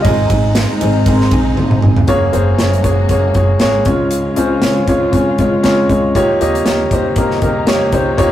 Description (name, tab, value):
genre	piano-driven pop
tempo	118 BPM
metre	4/4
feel	swing 56% on 16ths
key	unclear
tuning	A4 = 440 Hz
part	warm grand piano	accompaniment	0.0-8.3 s	Ab2 to Eb5	-14 LUFS	left 1 dB	none
part	warm studio string section	sustained chords	0.0-8.3 s	C3 to Gb4	-24 LUFS	equal	none
part	picked steel-string acoustic guitar	riff	0.0-2.1 s	Ab2 to Ab4	-21 LUFS	right 4 dB	none
part	modern studio drum kit	drums	0.0-8.3 s	hi-hat, kick drum, ride cymbal, snare drum, toms	-17 LUFS	equal	none
part	upright bass	bass	0.1-8.3 s	Gb1 to F2	-18 LUFS	right 1 dB	none
room	moderate stone room reverb, RT60 0.9 s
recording	rough rehearsal-room recording, warm saturation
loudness	-11 LUFS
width	side -12 dB against mid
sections	0.0-2.1 A section; 2.1-8.3 B section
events	grand piano solo 0.0-2.1; drum fill 1.6-2.1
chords	0.0 Ab; 2.1 Gbadd9; 3.9 Db; 6.1 Eb7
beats	| 0.05 0.56 1.06 1.57 | 2.08 2.59 3.10 3.61 | 4.12 4.62 5.13 5.64 | 6.15 6.66 7.17 7.67 | 8.18